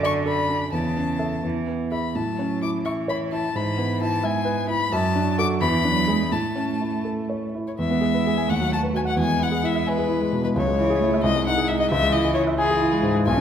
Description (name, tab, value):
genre	quick classical-period movement for piano trio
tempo	86 BPM (dotted quarters)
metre	6/8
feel	rubato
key	A major, E major from 7.8 s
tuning	A4 = 440 Hz
part	rich violin	melody	0.0-13.4 s	G#4 to D6	-25 LUFS	left 5 dB	none
part	rich cello	second line	0.0-13.4 s	C#3 to A3	-28 LUFS	right 7 dB	none
part	warm concert grand piano	accompaniment	0.0-13.4 s	B1 to G#5	-23 LUFS	equal	none
room	wet recital hall reverb, RT60 1.3 s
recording	none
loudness	-20 LUFS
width	side -8 dB against mid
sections	0.0-7.8 A section; 7.8-13.4 B section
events	none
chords	0.0 D/F#; 0.7 A/E; 1.4 E; 2.2 A; 3.5 E/G#; 4.9 D/F#; 5.6 E7; 6.3 A; 7.8 E; 8.5 B/D#; 9.2 E; 10.6 C#m; 11.2 G#/B#; 11.9 C#m